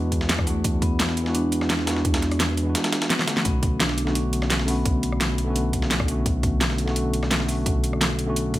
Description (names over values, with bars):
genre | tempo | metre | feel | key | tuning
liquid drum and bass | 171 BPM | 4/4 | straight | B dorian | A4 = 440 Hz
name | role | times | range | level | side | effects
vibraphone with medium hard mallets | melody | 0.0-5.7 s | A3 to D4 | -30 LUFS | equal | dub echo
tine electric piano | accompaniment | 0.0-8.6 s | D3 to G#4 | -26 LUFS | equal | medium tremolo
smooth synth bass | bass | 0.0-8.6 s | B1 to E2 | -26 LUFS | equal | none
dusty soul sampler-style drum kit | drums | 0.1-8.6 s | hi-hat, snare drum | -29 LUFS | equal | high-pass filter on snare, studio ambience, high-pass filter on hats
electronic kick drum | drums | 0.1-8.6 s | none | -25 LUFS | equal | studio ambience
pop drum kit | drums | 0.1-8.6 s | hi-hat, rim click, snare drum | -26 LUFS | equal | studio ambience
room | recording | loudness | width
digital ambience | none | -20 LUFS | side -16 dB against mid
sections
0.0-8.6 A section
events
drum fill 3.2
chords
0.0 E9; 3.5 Bm7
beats
0.29 | 0.65 0.99 1.35 1.70 | 2.05 2.40 2.75 3.10 | 3.45 3.80 4.15 4.50 | 4.86 5.21 5.56 5.91 | 6.26 6.61 6.96 7.31 | 7.66 8.01 8.36